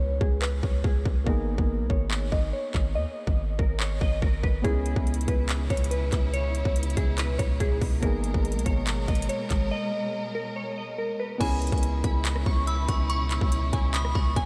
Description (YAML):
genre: hip hop, trap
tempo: 142 BPM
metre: 4/4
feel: half-time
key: unclear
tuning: A4 = 435 Hz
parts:
  - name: glassy digital keys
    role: melody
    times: 0.0-14.5 s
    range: G#4 to C#6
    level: -35 LUFS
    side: equal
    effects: chorus, low-pass filter, diffuse ambient delay
  - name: dark concert grand piano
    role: accompaniment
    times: 0.0-14.5 s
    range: A#3 to G#4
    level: -38 LUFS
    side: equal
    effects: low-pass filter
  - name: long sustained 808-style bass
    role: bass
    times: 0.0-14.5 s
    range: G#1 to D#2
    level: -30 LUFS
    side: equal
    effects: none
  - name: trap drum kit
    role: drums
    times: 0.2-14.5 s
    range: crash cymbal, handclaps, hi-hat, kick drum, rim click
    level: -30 LUFS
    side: equal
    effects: vintage 12-bit sampler grit
  - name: warm studio string section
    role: sustained chords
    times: 4.6-14.5 s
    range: B2 to A#4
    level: -38 LUFS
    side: equal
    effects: none
  - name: metallic FM bell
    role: second line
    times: 11.4-14.4 s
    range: B5 to E6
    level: -37 LUFS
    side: equal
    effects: chorus, diffuse ambient delay
room: light reverb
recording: none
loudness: -26 LUFS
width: mono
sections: 0.0-11.4 A section; 11.4-14.5 B section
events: break 0.0-4.6, 9.7-11.4; filter sweep 0.0-4.6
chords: 0.0 C#m7; 1.3 G#madd9; 4.6 C#m7; 8.0 G#madd9; 11.4 C#m7